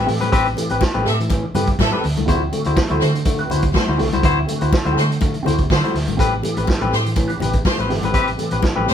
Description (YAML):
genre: disco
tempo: 123 BPM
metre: 4/4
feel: straight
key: A dorian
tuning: A4 = 440 Hz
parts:
  - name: clear symphonic string section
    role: second line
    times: 0.0-8.9 s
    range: A3 to E5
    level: -23 LUFS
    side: equal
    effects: none
  - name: barky tine electric piano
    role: accompaniment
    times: 0.0-8.9 s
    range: A2 to C5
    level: -21 LUFS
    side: left 4 dB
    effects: overdrive
  - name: hollow-body short-scale fingered electric bass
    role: bass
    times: 0.0-8.9 s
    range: G1 to D3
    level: -22 LUFS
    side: right 1 dB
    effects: none
  - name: mellow electric guitar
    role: accompaniment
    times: 0.1-8.9 s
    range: C4 to B4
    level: -26 LUFS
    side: right 3 dB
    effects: wah
  - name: vintage drum kit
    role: drums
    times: 0.1-8.9 s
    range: hi-hat, kick drum, snare drum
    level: -21 LUFS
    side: right 1 dB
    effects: none
  - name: congas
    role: percussion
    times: 0.2-8.7 s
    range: none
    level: -29 LUFS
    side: left 9 dB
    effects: none
room: moderate studio reverb, RT60 0.6 s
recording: band playing live in one room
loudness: -16 LUFS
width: side -9 dB against mid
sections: 0.0-8.9 A section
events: none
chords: 0.0 Am7; 2.0 D7; 6.2 Am7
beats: | 0.32 0.81 1.30 1.79 | 2.28 2.77 3.26 3.75 | 4.24 4.72 5.21 5.70 | 6.19 6.68 7.17 7.66 | 8.14 8.63